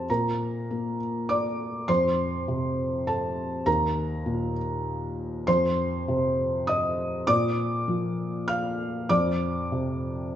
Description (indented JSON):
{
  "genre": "neoclassical minimalist piano",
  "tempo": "100 BPM",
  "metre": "3/4",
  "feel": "rubato",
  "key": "Bb major",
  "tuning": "A4 = 440 Hz",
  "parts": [
    { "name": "felt-muted upright piano", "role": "solo", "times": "0.0-10.4 s", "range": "Eb2 to F6", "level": "-24 LUFS", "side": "equal", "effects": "none" }
  ],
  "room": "wet large studio reverb, RT60 1.4 s",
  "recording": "band playing live in one room, nothing above 7.8 kHz",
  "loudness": "-24 LUFS",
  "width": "side -10 dB against mid",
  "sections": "0.0-10.4 A section",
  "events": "none",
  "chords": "0.1 Bb; 1.9 F; 3.7 Eb5; 5.5 F5; 7.3 Bb; 9.1 F5"
}